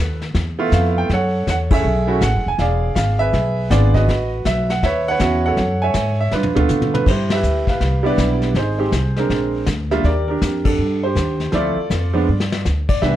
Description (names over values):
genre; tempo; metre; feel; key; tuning
jazz piano trio; 161 BPM; 4/4; swing 64% on 8ths; C major from 7.1 s; A4 = 440 Hz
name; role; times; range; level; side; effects
clear baby grand piano; melody; 0.0-13.2 s; E3 to G#5; -19 LUFS; right 2 dB; none
upright bass; bass; 0.0-13.2 s; E1 to D3; -19 LUFS; equal; none
vintage brush drum kit; drums; 0.2-13.2 s; brushed snare drum, crash cymbal, hi-hat, kick drum, ride cymbal, snare drum, toms; -23 LUFS; left 2 dB; none
room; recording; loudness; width
light reverb; dark, warm production; -16 LUFS; side -12 dB against mid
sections
0.0-7.1 A section; 7.1-13.2 B section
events
band accent 1.7, 7.3, 10.6; drum fill 6.3-7.1, 12.3-12.7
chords
0.0 C#7#9b13 (rootless); 1.1 F#m9; 2.6 E7b9; 4.1 A69; 5.6 F#m9; 6.3 G7; 7.1 Cmaj7; 8.6 Ab; 9.3 Bb9; 10.1 Ebmaj7; 11.5 Dm7; 12.3 G5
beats
0.35 0.73 | 1.10 1.47 1.85 2.22 | 2.59 2.97 3.34 3.71 | 4.08 4.46 4.83 5.20 | 5.58 5.95 6.32 6.70 | 7.07 7.44 7.82 8.19 | 8.56 8.93 9.31 9.68 | 10.05 10.43 10.80 11.17 | 11.54 11.91 12.29 12.66 | 13.03